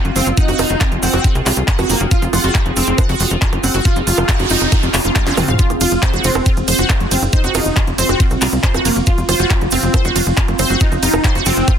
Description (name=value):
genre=psychedelic trance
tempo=138 BPM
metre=4/4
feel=straight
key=F phrygian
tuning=A4 = 440 Hz
part: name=tight sequencer bass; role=bass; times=0.0-11.6 s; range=F1 to C2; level=-19 LUFS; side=equal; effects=none
part: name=drum and bass drum kit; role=drums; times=0.0-11.8 s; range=bongos, handclaps, hi-hat, ride cymbal, snare drum, toms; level=-20 LUFS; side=right 2 dB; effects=none
part: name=granular cloud pad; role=texture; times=0.0-11.8 s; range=C4 to F5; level=-22 LUFS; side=right 1 dB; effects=built-in reverb, sidechain pumping
part: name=wide unison lead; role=melody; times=0.2-11.7 s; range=Bb3 to F4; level=-22 LUFS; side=equal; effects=phaser, sidechain pumping, dub echo
part: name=wide unison pluck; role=riff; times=0.2-11.8 s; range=F4 to Gb5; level=-21 LUFS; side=right 2 dB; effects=auto-pan, sidechain pumping, dub echo
part: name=cabasa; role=percussion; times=0.2-11.8 s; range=none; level=-27 LUFS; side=right 5 dB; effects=none
part: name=electronic kick drum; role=drums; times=0.4-11.8 s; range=none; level=-15 LUFS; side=equal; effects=none
part: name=noise sweep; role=sound effects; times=4.0-5.6 s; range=none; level=-24 LUFS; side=right 2 dB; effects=none
room=light reverb, digital ambience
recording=dense, heavily limited modern master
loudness=-12 LUFS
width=side -8 dB against mid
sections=0.0-11.8 A section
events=noise sweep 4.0-5.6; drum fill 5.2-5.6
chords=0.0 F5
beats=| 0.37 0.81 1.24 1.68 | 2.11 2.55 2.98 3.42 | 3.85 4.29 4.72 5.16 | 5.59 6.03 6.46 6.90 | 7.33 7.76 8.20 8.63 | 9.07 9.51 9.94 10.37 | 10.81 11.24 11.68